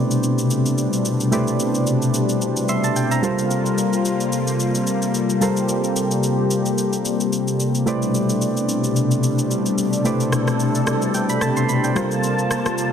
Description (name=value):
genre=amapiano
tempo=110 BPM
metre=4/4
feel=swing 55% on 16ths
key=unclear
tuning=A4 = 440 Hz
part: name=soft electric-piano-like synth keys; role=accompaniment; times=0.0-12.9 s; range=G3 to C6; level=-23 LUFS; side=right 2 dB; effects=chorus
part: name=warm analog pad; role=sustained chords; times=0.0-12.9 s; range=B2 to A5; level=-20 LUFS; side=left 2 dB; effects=chorus
part: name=electronic shaker and rim click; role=drums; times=0.1-12.9 s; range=none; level=-28 LUFS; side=left 1 dB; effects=soft clipping on snare
room=moderate plate reverb, RT60 1.7 s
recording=dense, heavily limited modern master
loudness=-18 LUFS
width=side -8 dB against mid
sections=0.0-12.9 A section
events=synth keys fill 2.4-3.5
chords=0.0 Am11; 3.2 Gm11; 7.9 Am11; 12.0 Gm11